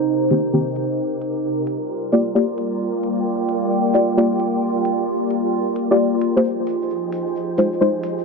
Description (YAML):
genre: UK garage, two-step garage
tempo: 132 BPM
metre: 4/4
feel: swing 65% on 16ths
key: unclear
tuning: A4 = 439 Hz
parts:
  - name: soft string machine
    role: sustained chords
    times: 0.0-8.2 s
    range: C3 to D6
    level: -25 LUFS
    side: equal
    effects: phaser, ensemble chorus
  - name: warbly tape-like pad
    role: texture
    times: 0.0-8.2 s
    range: Bb3 to Bb5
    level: -22 LUFS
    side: right 1 dB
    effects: chorus, built-in reverb
  - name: deep mellow chord stab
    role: stabs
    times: 0.3-7.9 s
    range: Eb3 to D5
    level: -18 LUFS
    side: left 1 dB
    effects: chorus, ping-pong delay
  - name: electronic hi-hat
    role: drums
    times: 0.3-8.2 s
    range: none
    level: -48 LUFS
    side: left 1 dB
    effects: none
  - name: tube shaker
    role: percussion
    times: 6.4-8.2 s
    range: none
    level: -56 LUFS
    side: right 1 dB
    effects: none
room: light reverb, digital ambience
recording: low-pass filter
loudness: -18 LUFS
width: side -4 dB against mid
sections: 0.0-8.2 A section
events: filter sweep on synth stab 0.0-8.2; filter sweep on string machine 0.0-8.2; filter sweep 0.0-8.2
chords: 0.0 Cm7; 1.7 Gm7; 6.4 Fm7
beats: 0.08 0.54 | 0.99 1.44 1.90 2.35 | 2.81 3.26 3.72 4.17 | 4.62 5.08 5.54 5.99 | 6.44 6.90 7.35 7.81